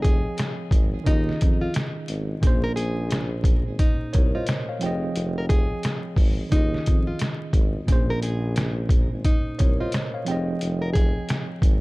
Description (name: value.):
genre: hip hop, boom-bap hip-hop.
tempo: 88 BPM.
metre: 4/4.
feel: swing 62% on 16ths.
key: F minor.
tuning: A4 = 439 Hz.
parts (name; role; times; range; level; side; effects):
nylon-string guitar; melody; 0.0-11.5 s; Eb4 to Bb4; -32 LUFS; equal; high-pass filter, low-pass filter, ping-pong delay.
mellow tine electric piano; accompaniment; 0.0-11.8 s; Bb2 to G5; -29 LUFS; right 1 dB; medium stereo tremolo, high-pass filter, low-pass filter.
breathy tuba; bass; 0.0-11.8 s; F1 to F2; -28 LUFS; equal; none.
trip hop sampler-style drum kit; drums; 0.0-11.8 s; hi-hat, kick drum, snare drum; -21 LUFS; equal; none.
room: little or no reverb.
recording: dark, warm production, vinyl crackle.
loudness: -21 LUFS.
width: side -22 dB against mid.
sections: 0.0-11.8 A section.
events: none.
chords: 0.0 Fm9; 1.1 Eb9sus4; 2.4 Bbm9; 4.8 Fm9; 6.5 Eb9sus4; 7.9 Bbm9; 10.3 Fm9.